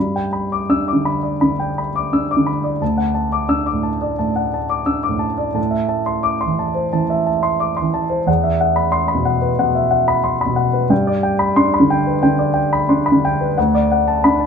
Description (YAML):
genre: neoclassical minimalist piano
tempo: 89 BPM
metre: 4/4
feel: rubato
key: G major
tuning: A4 = 440 Hz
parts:
  - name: warm grand piano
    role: solo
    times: 0.0-14.5 s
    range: D2 to E6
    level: -15 LUFS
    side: equal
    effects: none
room: wet small room reverb, RT60 0.5 s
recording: band playing live in one room, nothing above 10.6 kHz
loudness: -15 LUFS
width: side -6 dB against mid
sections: 0.0-14.5 A section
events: none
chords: 0.0 G; 2.8 D; 5.6 Am; 8.3 Esus2; 10.9 G; 13.6 D